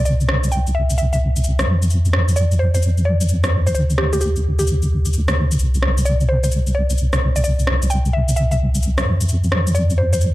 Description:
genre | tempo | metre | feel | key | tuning
UK garage, two-step garage | 130 BPM | 4/4 | swing 65% on 16ths | unclear | A4 = 439 Hz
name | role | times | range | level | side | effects
mallet-like synth pluck | melody | 0.0-10.2 s | G4 to G5 | -24 LUFS | equal | chorus, tape echo
deep soft wobble bass | bass | 0.0-10.3 s | C2 to F2 | -16 LUFS | equal | chorus
electronic shaker and rim click | drums | 0.1-10.3 s | none | -24 LUFS | equal | overdrive
room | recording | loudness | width
little or no reverb | dark, warm production | -15 LUFS | side -16 dB against mid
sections
0.0-10.3 A section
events
none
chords
0.0 N.C.; 1.7 F5; 3.7 Dsus4; 5.6 N.C.; 9.1 F5

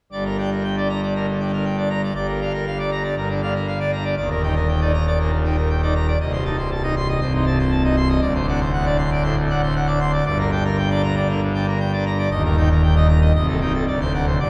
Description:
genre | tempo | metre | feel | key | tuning
classical, organ toccata | 118 BPM | 4/4 | straight | G minor | A4 = 438 Hz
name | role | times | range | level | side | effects
pipe organ, full organ | solo | 0.1-14.5 s | C1 to C6 | -20 LUFS | equal | none
room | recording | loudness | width
wet cathedral reverb, RT60 5.7 s | heard from further back in the room | -20 LUFS | mono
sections
0.1-14.5 A section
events
none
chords
0.1 Gm; 2.2 Bb/G; 4.2 Ebmaj7; 6.2 Adim/C; 8.2 D7; 10.3 Gm; 12.3 Eb; 13.3 Am7b5/C; 13.9 D7

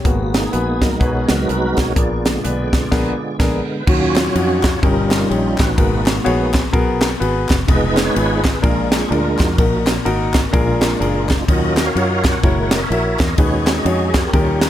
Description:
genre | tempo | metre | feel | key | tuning
uptempo gospel | 126 BPM | 4/4 | swing 61% on 8ths | Eb minor | A4 = 442 Hz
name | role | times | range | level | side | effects
warm upright piano | accompaniment | 0.0-14.7 s | G2 to Fb5 | -21 LUFS | left 2 dB | none
tonewheel organ | sustained chords | 0.0-14.7 s | D3 to Gb5 | -21 LUFS | right 2 dB | slow rotary speaker, overdrive, chorus vibrato
fingered electric bass | bass | 0.1-14.7 s | F1 to Gb2 | -22 LUFS | equal | none
crisp fusion drum kit | drums | 0.1-14.7 s | crash cymbal, hi-hat, kick drum, ride cymbal, snare drum | -18 LUFS | equal | none
group handclap | percussion | 4.2-14.7 s | none | -30 LUFS | left 3 dB | none
room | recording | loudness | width
light reverb, small room reverb | none | -14 LUFS | side -12 dB against mid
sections
0.0-3.9 A section; 3.9-14.7 B section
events
tonewheel organ solo 0.0-3.9, 3.9-14.7; band accent 2.9-3.9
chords
0.1 Abm9; 2.0 Bb7b9; 3.9 Ebm9; 4.8 Eb7/G; 5.8 Abm9; 7.7 Fm7b5; 8.6 Bb7; 9.6 Ebm/Bb; 10.5 Bb7; 11.5 Ebm9; 12.4 Gb7; 13.4 B6/D#

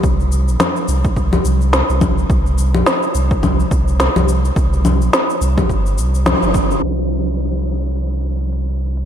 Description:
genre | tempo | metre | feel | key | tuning
organic downtempo | 106 BPM | 4/4 | swing 58% on 16ths | unclear | A4 = 441 Hz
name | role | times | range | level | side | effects
warm sub bass | bass | 0.0-9.1 s | G1 to C2 | -17 LUFS | equal | sidechain pumping
electronic kick drum | drums | 0.0-6.7 s | none | -18 LUFS | equal | overdrive
organic electronic drum kit | drums | 0.0-9.1 s | congas, hi-hat, shaker, snare drum | -17 LUFS | left 1 dB | overdrive
room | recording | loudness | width
moderate huge ambient reverb, RT60 7.5 s | dreamy mix soaked in reverb, low-pass filter | -14 LUFS | side -9 dB against mid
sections
0.0-6.8 A section; 6.8-9.1 B section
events
band accent 6.3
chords
none

